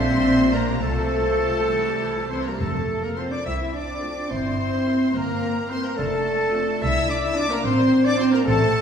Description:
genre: quick classical-period movement for symphony orchestra.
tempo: 67-75 BPM (dotted quarters).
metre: 6/8.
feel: rubato.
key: F major.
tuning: A4 = 440 Hz.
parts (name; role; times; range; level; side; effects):
clear chamber violin section; melody; 0.0-8.8 s; A5 to E6; -32 LUFS; left 4 dB; none.
rich chamber violin section; second line; 0.0-8.8 s; A4 to E5; -35 LUFS; left 2 dB; none.
silver concert flute; second line; 0.0-8.8 s; A4 to E5; -30 LUFS; left 1 dB; none.
warm oboe; second line; 0.0-8.8 s; A4 to E5; -32 LUFS; equal; none.
clear studio viola section; accompaniment; 0.0-8.4 s; E3 to A4; -34 LUFS; right 1 dB; none.
dark bassoon; accompaniment; 0.0-8.8 s; C4 to E4; -30 LUFS; right 1 dB; none.
dark French horn section; sustained chords; 0.0-8.8 s; A3 to E4; -25 LUFS; left 1 dB; none.
clear trumpet; stabs; 0.0-8.8 s; A4 to E5; -32 LUFS; right 2 dB; none.
rich chamber cello section; bass; 0.0-8.8 s; A3 to E4; -27 LUFS; right 1 dB; none.
warm symphonic double bass section; bass; 0.0-8.8 s; F1 to C2; -28 LUFS; right 2 dB; none.
timpani; percussion; 2.6-3.4 s; F2; -30 LUFS; left 1 dB; none.
room: wet scoring stage reverb, RT60 1.6 s.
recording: recorded in a church or concert hall, studio reverb.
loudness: -20 LUFS.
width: side -7 dB against mid.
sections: 0.0-2.6 A section; 2.6-8.8 B section.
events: none.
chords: 0.0 Gm/Bb; 0.8 F/C; 1.7 C; 2.6 F; 4.3 C7/G; 6.0 F; 7.6 F/A.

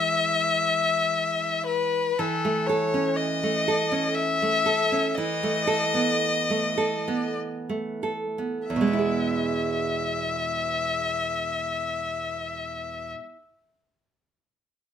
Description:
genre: romantic duo for violin and classical guitar.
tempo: 43-61 BPM.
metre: 3/4.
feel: rubato.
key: E major.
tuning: A4 = 437 Hz.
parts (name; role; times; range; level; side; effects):
rich violin; melody; 0.0-13.1 s; A4 to E5; -25 LUFS; left 4 dB; slapback echo.
nylon-string guitar; accompaniment; 0.0-13.4 s; E2 to A4; -27 LUFS; right 3 dB; none.
room: light reverb.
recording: none.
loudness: -23 LUFS.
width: side -8 dB against mid.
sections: 0.0-2.2 A section; 2.2-8.7 B section; 8.7-12.6 C section.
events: slowing down 0.6-8.7.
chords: 0.0 E; 2.2 A/E; 5.2 B7/E; 8.7 E.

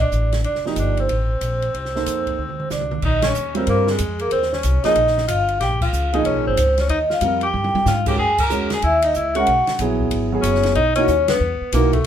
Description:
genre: modal jazz.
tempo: 186 BPM.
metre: 4/4.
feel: swing 63% on 8ths.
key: C dorian.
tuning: A4 = 441 Hz.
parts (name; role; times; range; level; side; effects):
vibraphone with soft mallets; melody; 0.0-12.1 s; Ab4 to Ab5; -20 LUFS; equal; none.
clear tenor saxophone; second line; 0.0-12.1 s; Ab3 to Bb4; -26 LUFS; left 3 dB; none.
upright bass; bass; 0.0-12.0 s; F1 to Ab2; -22 LUFS; equal; none.
open jazz drum kit; drums; 0.0-12.1 s; crash cymbal, hi-hat, kick drum, ride cymbal, snare drum, toms; -27 LUFS; equal; none.
warm grand piano; accompaniment; 0.7-11.9 s; Fb3 to C5; -23 LUFS; right 4 dB; none.
room: moderate small room ambience, RT60 0.5 s.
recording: minimal, uncompressed stereo recording, faint mains hum.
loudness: -17 LUFS.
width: side -9 dB against mid.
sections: 0.0-3.0 A section; 3.0-12.1 B section.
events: drum fill 2.4-3.0, 7.5-7.9; band accent 3.2, 5.8, 8.3, 11.2.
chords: 0.0 C13sus4; 3.0 Bb13sus4; 8.2 Gb13sus4.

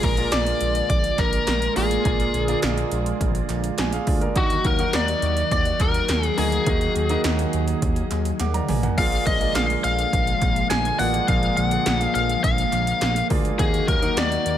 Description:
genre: 1980s-style pop.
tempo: 104 BPM.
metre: 4/4.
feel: straight.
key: Eb harmonic minor.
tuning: A4 = 444 Hz.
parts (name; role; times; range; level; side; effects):
biting lead guitar; melody; 0.0-14.6 s; Gb4 to Ab5; -24 LUFS; left 3 dB; overdrive, ping-pong delay.
soft synth bell; second line; 0.0-14.6 s; Gb5 to Ab6; -34 LUFS; right 1 dB; chorus, phaser, ping-pong delay.
warm concert grand piano; accompaniment; 0.0-14.6 s; Bb2 to D6; -28 LUFS; right 2 dB; none.
phased analog pad; sustained chords; 0.0-14.6 s; D3 to Ab4; -29 LUFS; right 1 dB; phaser, chorus.
smooth synth bass; bass; 0.0-14.6 s; A1 to Eb2; -26 LUFS; equal; none.
80s electronic pad drums; drums; 0.0-14.6 s; crash cymbal, hi-hat, kick drum, snare drum, tambourine, toms; -25 LUFS; equal; gated reverb on snare and toms.
group handclap; percussion; 0.3-14.3 s; none; -39 LUFS; right 4 dB; none.
room: light reverb.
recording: none.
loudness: -19 LUFS.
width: side -10 dB against mid.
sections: 0.0-14.6 A section.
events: drum fill 8.4-9.0.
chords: 0.0 Bb7; 4.4 Ebm; 9.0 Bb7; 13.6 Ebm.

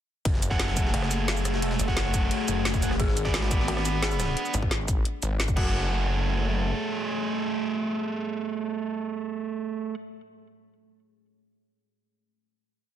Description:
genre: dark technical drum and bass.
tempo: 175 BPM.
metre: 4/4.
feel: straight.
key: F# minor.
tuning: A4 = 440 Hz.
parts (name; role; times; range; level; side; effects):
deep dark ambient pad; sustained chords; 0.9-9.2 s; A3 to D5; -35 LUFS; left 2 dB; chorus, built-in reverb, sidechain pumping.
snarling distorted saw bass; bass; 0.3-6.7 s; F#1 to G#1; -28 LUFS; equal; distortion, overdrive, sidechain pumping.
breakbeat sampler-style drum kit; drums; 0.3-4.3 s; ride cymbal, snare drum; -38 LUFS; equal; overdrive, high-pass filter on cymbals, high-pass filter on snare, high-pass filter on room.
drum and bass drum kit; drums; 0.3-5.6 s; crash cymbal, hi-hat, rim click, shaker, snare drum; -31 LUFS; equal; none.
electronic kick drum; drums; 0.3-5.6 s; none; -27 LUFS; equal; none.
tight distorted guitar; stabs; 0.5-9.9 s; A3 to F#5; -30 LUFS; right 4 dB; distortion, ping-pong delay.
pulsing pluck wobble bass; bass; 0.9-4.4 s; F#1 to G#1; -28 LUFS; left 1 dB; distortion, chorus.
dark detuned synth bell; arpeggios; 3.0-5.9 s; F#4 to G#4; -36 LUFS; left 4 dB; chorus, sidechain pumping, ping-pong delay.
room: light reverb, digital ambience.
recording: dense, heavily limited modern master.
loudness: -24 LUFS.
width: side -10 dB against mid.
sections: 0.3-5.7 drop; 5.7-8.5 final hit.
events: drop 0.3-5.7.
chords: 0.3 F#madd9; 3.0 G#dim; 5.6 F#madd9.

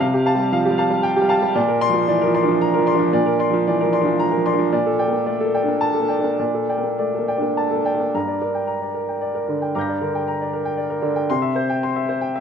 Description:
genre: neoclassical minimalist piano.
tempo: 99-118 BPM.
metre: 3/4.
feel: rubato.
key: G dorian.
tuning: A4 = 441 Hz.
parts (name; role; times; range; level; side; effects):
clear upright piano; solo; 0.0-12.4 s; G2 to Bb6; -18 LUFS; equal; none.
room: moderate concert hall reverb, RT60 1.8 s.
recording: minimal, uncompressed stereo recording.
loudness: -18 LUFS.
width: side -7 dB against mid.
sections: 0.0-8.1 A section; 8.1-12.4 B section.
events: none.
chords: 0.0 Fadd9/C; 1.6 Bbadd9; 4.7 Gmadd9/Bb; 8.1 Gm; 11.3 C.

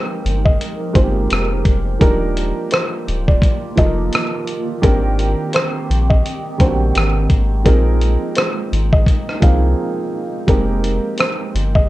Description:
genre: lo-fi hip hop.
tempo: 85 BPM.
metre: 4/4.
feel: swing 57% on 16ths.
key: F dorian.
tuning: A4 = 440 Hz.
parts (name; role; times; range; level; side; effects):
felt-muted upright piano; melody; 0.0-11.9 s; Bb4 to F5; -23 LUFS; equal; none.
dark upright piano; accompaniment; 0.0-11.9 s; Eb3 to Bb4; -22 LUFS; right 3 dB; none.
granular cloud pad; sustained chords; 0.0-11.9 s; Eb3 to Bb4; -28 LUFS; right 1 dB; built-in reverb.
soft dub sub bass; bass; 0.2-11.9 s; D1 to C2; -18 LUFS; equal; none.
dusty soul sampler-style drum kit; drums; 0.3-11.9 s; hi-hat, kick drum, rim click; -16 LUFS; equal; vintage 12-bit sampler grit.
room: light reverb.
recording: none.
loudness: -14 LUFS.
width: side -17 dB against mid.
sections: 0.0-11.9 A section.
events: break 9.8-10.5.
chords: 0.0 Fm11; 2.0 Ebmaj9; 4.8 Abmaj9#11; 7.7 Bb9sus4; 10.5 Fm11.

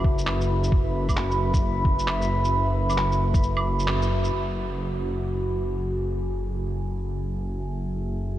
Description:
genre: future garage.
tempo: 133 BPM.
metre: 4/4.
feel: swing 63% on 16ths.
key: F# minor.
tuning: A4 = 440 Hz.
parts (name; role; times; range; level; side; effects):
dark analog pad; sustained chords; 0.0-8.4 s; F#4 to B5; -28 LUFS; equal; chorus, phaser, sidechain pumping.
swelling detuned saw bass; bass; 0.0-8.4 s; F#1; -26 LUFS; equal; sidechain pumping.
electronic kick drum; drums; 0.0-3.4 s; none; -22 LUFS; equal; none.
electronic shaker, handclaps and claves; drums; 0.2-4.3 s; none; -33 LUFS; right 1 dB; low-pass filter on perc, low-pass filter on snare, low-pass filter on room.
room: moderate cathedral reverb, RT60 6.6 s.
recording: dreamy mix soaked in reverb, cassette tape.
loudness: -22 LUFS.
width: side -13 dB against mid.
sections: 0.0-4.3 A section; 4.3-8.4 B section.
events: kick drops out 3.4-4.3; band accent 3.9.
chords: 0.0 Esus4/F#; 4.3 F#m9.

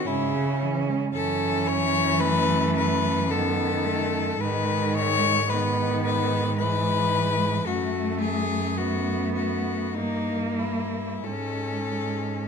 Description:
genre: classical, lyrical piece for cello ensemble.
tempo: 45-56 BPM.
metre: 3/4.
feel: rubato.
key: unclear.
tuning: A4 = 439 Hz.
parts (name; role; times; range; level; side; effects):
rich cello; melody; 0.0-12.5 s; D#4 to C#5; -26 LUFS; left 5 dB; none.
rich cello; second line; 0.0-12.5 s; G#3 to C#4; -30 LUFS; right 9 dB; none.
rich cello; accompaniment; 0.0-12.5 s; G#2 to C#4; -30 LUFS; left 4 dB; none.
rich cello; bass; 0.1-12.5 s; F#2 to C#3; -29 LUFS; right 3 dB; none.
room: moderate recital hall reverb, RT60 1.8 s.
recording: close, detailed microphones.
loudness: -22 LUFS.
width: side -6 dB against mid.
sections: 0.0-12.5 A section.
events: none.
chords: 0.1 C#m/G#; 1.1 F#m7; 3.3 D#dim/F#; 4.4 G#m; 6.6 E/G#; 7.7 F#madd11; 10.0 Gm6; 11.3 C#5/G#.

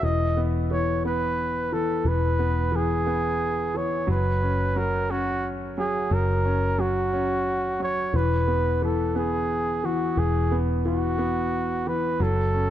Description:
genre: six-eight pop ballad.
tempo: 59 BPM (dotted quarters).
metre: 6/8.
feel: straight.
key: E major.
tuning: A4 = 439 Hz.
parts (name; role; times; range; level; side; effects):
warm flugelhorn; melody; 0.0-12.7 s; F#4 to D#5; -26 LUFS; right 2 dB; ping-pong delay.
clear concert grand piano; accompaniment; 0.0-12.7 s; E3 to C#4; -27 LUFS; left 1 dB; none.
vintage muted fingered electric bass; bass; 0.0-12.7 s; E1 to F#1; -26 LUFS; equal; none.
room: little or no reverb.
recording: none.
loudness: -22 LUFS.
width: side -11 dB against mid.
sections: 0.0-12.7 A section.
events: none.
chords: 0.0 E; 4.1 F#; 8.1 Eadd9; 12.2 F#m.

